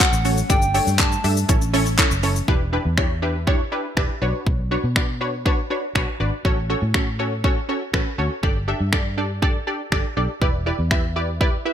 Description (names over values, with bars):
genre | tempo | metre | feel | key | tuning
dance-pop | 121 BPM | 4/4 | straight | unclear | A4 = 440 Hz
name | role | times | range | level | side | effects
soft struck synth lead | melody | 0.0-1.7 s | F#5 to A5 | -24 LUFS | left 1 dB | chorus
punchy chord stab | accompaniment | 0.0-11.7 s | C#4 to E5 | -24 LUFS | right 1 dB | chorus, sidechain pumping
airy breathy pad | sustained chords | 0.0-2.5 s | E3 to D4 | -33 LUFS | left 2 dB | none
house drum kit | drums | 0.0-11.5 s | finger snaps, handclaps, hi-hat, kick drum, shaker | -20 LUFS | equal | gated reverb
vintage muted fingered electric bass | bass | 0.1-11.6 s | E1 to B2 | -24 LUFS | equal | sidechain pumping
room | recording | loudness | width
light reverb | bright 1980s-style digital production | -19 LUFS | side -9 dB against mid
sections
0.0-2.5 A section; 2.5-11.7 B section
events
none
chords
0.5 Gsus2; 1.5 A; 2.5 Em7; 4.2 Bmadd9; 6.4 F#m/A; 8.4 Gsus2; 10.4 Em7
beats
0.00 | 0.50 0.99 1.49 1.99 | 2.48 2.98 3.47 3.97 | 4.47 4.96 5.46 5.95 | 6.45 6.95 7.44 7.94 | 8.43 8.93 9.42 9.92 | 10.42 10.91 11.41